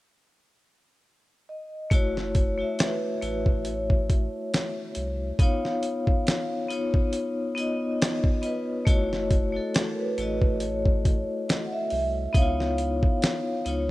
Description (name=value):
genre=lo-fi hip hop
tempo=69 BPM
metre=4/4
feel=swing 55% on 16ths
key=F# dorian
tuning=A4 = 439 Hz
part: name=vibraphone with soft mallets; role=melody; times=1.5-13.9 s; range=A#4 to F#5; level=-32 LUFS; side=right 2 dB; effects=low-pass filter
part: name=vibraphone with hard mallets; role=accompaniment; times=1.9-13.9 s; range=A3 to E5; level=-28 LUFS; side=left 2 dB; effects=low-pass filter
part: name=warm sub bass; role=bass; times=1.9-13.9 s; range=F#1 to C#2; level=-32 LUFS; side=equal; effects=none
part: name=dusty soul sampler-style drum kit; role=drums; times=1.9-13.9 s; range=hi-hat, kick drum, snare drum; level=-24 LUFS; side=equal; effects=none
room=light reverb, digital ambience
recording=rough home demo mix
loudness=-23 LUFS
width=side -18 dB against mid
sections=0.0-1.9 A section; 1.9-13.9 B section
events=none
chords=0.0 N.C.; 1.9 F#m7; 5.4 C#9; 8.9 F#m7; 12.3 C#9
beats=0.17 1.04 | 1.91 2.78 3.65 4.52 | 5.39 6.26 7.13 8.00 | 8.87 9.74 10.61 11.48 | 12.35 13.22